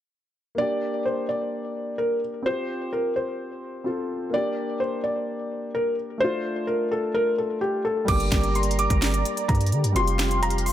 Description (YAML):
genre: hip hop, trap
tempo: 128 BPM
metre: 4/4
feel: half-time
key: G minor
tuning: A4 = 442 Hz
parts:
  - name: dark baby grand piano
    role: accompaniment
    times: 0.5-10.7 s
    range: G3 to A4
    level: -29 LUFS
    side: left 1 dB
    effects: none
  - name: felt-muted upright piano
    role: melody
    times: 0.6-10.7 s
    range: G4 to D6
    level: -26 LUFS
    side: left 1 dB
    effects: ping-pong delay
  - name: warm analog pad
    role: sustained chords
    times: 8.1-10.7 s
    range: G4 to C6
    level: -32 LUFS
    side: right 1 dB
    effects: chorus
  - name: long sustained 808-style bass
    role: bass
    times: 8.1-10.7 s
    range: F1 to D3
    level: -24 LUFS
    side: equal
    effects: none
  - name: trap drum kit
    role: drums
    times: 8.1-10.7 s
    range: crash cymbal, finger snaps, hi-hat, kick drum, snare drum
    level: -26 LUFS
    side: equal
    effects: none
room: digital ambience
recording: none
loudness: -23 LUFS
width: side -11 dB against mid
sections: 0.6-8.1 A section; 8.1-10.7 B section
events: none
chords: 0.6 Gm; 2.5 Fsus2; 4.3 Gm; 6.2 Dm; 8.1 Gm; 10.0 Fsus2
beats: | 0.58 1.05 1.52 1.99 | 2.46 2.93 3.40 3.87 | 4.33 4.80 5.27 5.74 | 6.21 6.68 7.15 7.62 | 8.08 8.55 9.02 9.49 | 9.96 10.43